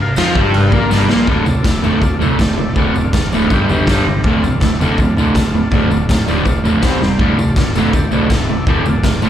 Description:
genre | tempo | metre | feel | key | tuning
garage rock duo or trio | 162 BPM | 4/4 | straight | D minor | A4 = 441 Hz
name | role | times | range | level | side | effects
combo organ | sustained chords | 0.0-9.3 s | F4 to Bb5 | -26 LUFS | left 2 dB | none
fuzz fingered electric bass | bass | 0.0-9.3 s | D1 to F2 | -21 LUFS | equal | overdrive
crunchy overdriven guitar | riff | 0.2-9.3 s | D2 to F4 | -15 LUFS | equal | spring reverb
raw garage drum kit | drums | 0.2-9.3 s | crash cymbal, kick drum, snare drum, toms | -16 LUFS | equal | none
tambourine | percussion | 0.2-9.3 s | none | -34 LUFS | left 1 dB | none
room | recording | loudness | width
light reverb, studio reverb | live gig heard through the venue's PA, club reverb | -12 LUFS | side -10 dB against mid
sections
0.0-1.3 A section; 1.3-9.3 B section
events
drum fill 0.9-1.3, 7.0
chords
0.0 Bb5; 1.3 Dm; 3.5 G5; 4.2 Dm; 6.8 C5; 7.2 Dm

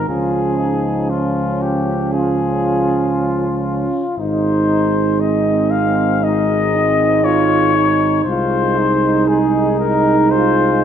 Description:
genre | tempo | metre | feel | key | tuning
classical, hymn-like piece for brass band | 59 BPM | 4/4 | rubato | Ab major | A4 = 442 Hz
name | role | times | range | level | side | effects
warm flugelhorn | melody | 0.0-10.8 s | F4 to F5 | -19 LUFS | left 6 dB | none
mellow French horn section | second line | 0.0-10.8 s | Db4 to Eb4 | -20 LUFS | right 9 dB | none
bright trombone section | accompaniment | 0.0-10.8 s | C4 to F4 | -20 LUFS | left 2 dB | none
clear euphonium | accompaniment | 0.0-10.8 s | F3 to Ab3 | -23 LUFS | right 3 dB | none
mellow tuba | bass | 0.0-10.8 s | Ab1 to Db2 | -21 LUFS | equal | none
room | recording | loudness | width
moderate scoring stage reverb, RT60 1.6 s | none | -14 LUFS | side -8 dB against mid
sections
0.0-10.8 A section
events
none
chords
0.1 Db; 4.2 Ab; 8.3 Ab/C

